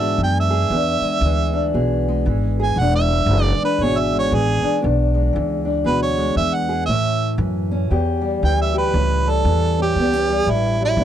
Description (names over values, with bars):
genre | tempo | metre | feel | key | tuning
acoustic country blues, solo or duo | 117 BPM | 4/4 | swing 60% on 8ths | unclear | A4 = 440 Hz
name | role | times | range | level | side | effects
clear harmonica | melody | 0.0-11.0 s | E4 to G#5 | -21 LUFS | right 4 dB | none
fingerpicked steel-string acoustic guitar | accompaniment | 0.0-11.0 s | E2 to G#4 | -21 LUFS | left 2 dB | none
upright bass | bass | 0.0-11.0 s | E1 to A2 | -20 LUFS | equal | none
room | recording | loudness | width
light reverb | dry, close 1970s-style studio recording | -16 LUFS | side -10 dB against mid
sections
0.0-11.0 A section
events
harmonica solo 0.0-11.0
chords
0.0 E7; 6.9 A7